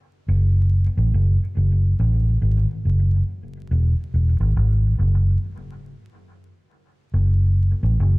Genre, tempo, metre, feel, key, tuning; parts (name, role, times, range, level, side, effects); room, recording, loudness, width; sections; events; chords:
reggae; 70 BPM; 4/4; swing 62% on 16ths; F# minor; A4 = 442 Hz
vintage muted fingered electric bass; solo; 0.3-8.2 s; E1 to A1; -17 LUFS; equal
wet echo chamber reverb, RT60 1.5 s; dark, warm production, vinyl crackle; -17 LUFS; side -25 dB against mid
0.0-8.2 A section